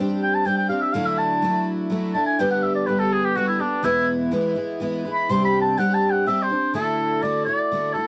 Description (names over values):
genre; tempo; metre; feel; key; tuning
rock; 124 BPM; 3/4; straight; D mixolydian; A4 = 440 Hz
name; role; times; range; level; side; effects
picked twelve-string acoustic guitar; accompaniment; 0.0-8.1 s; E2 to G4; -25 LUFS; equal; none
warm oboe; melody; 0.2-8.1 s; D4 to C6; -24 LUFS; equal; cassette tape
room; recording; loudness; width
light reverb; home recording on cassette; -22 LUFS; mono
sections
0.0-6.7 A section; 6.7-8.1 B section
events
oboe solo 0.0-6.7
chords
0.0 Csus2; 0.9 Dadd9; 2.4 G/D; 3.8 E; 5.3 Csus2; 6.7 Dadd9